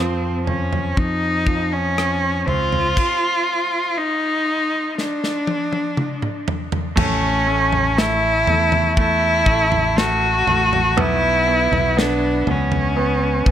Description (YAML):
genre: pop ballad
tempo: 60 BPM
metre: 4/4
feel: straight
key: A major from 7.0 s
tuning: A4 = 440 Hz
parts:
  - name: rich cello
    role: melody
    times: 0.0-13.5 s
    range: C4 to F#4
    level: -19 LUFS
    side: equal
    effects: dub echo
  - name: clear grand piano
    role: accompaniment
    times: 0.0-13.5 s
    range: F3 to C4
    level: -24 LUFS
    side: right 2 dB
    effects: dub echo
  - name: fingered electric bass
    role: bass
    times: 0.0-13.5 s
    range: A1 to F2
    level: -23 LUFS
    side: left 1 dB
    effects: none
  - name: modern studio drum kit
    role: drums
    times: 0.5-13.5 s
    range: crash cymbal, kick drum, rim click, snare drum, toms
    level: -22 LUFS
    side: equal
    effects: none
room: light reverb, studio reverb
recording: echo-heavy mix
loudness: -16 LUFS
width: side -10 dB against mid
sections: 0.0-7.0 A section; 7.0-13.5 B section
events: drum fill 5.0-7.0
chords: 0.0 Dbmaj7/F; 3.0 N.C.; 7.0 A; 11.0 Bmadd9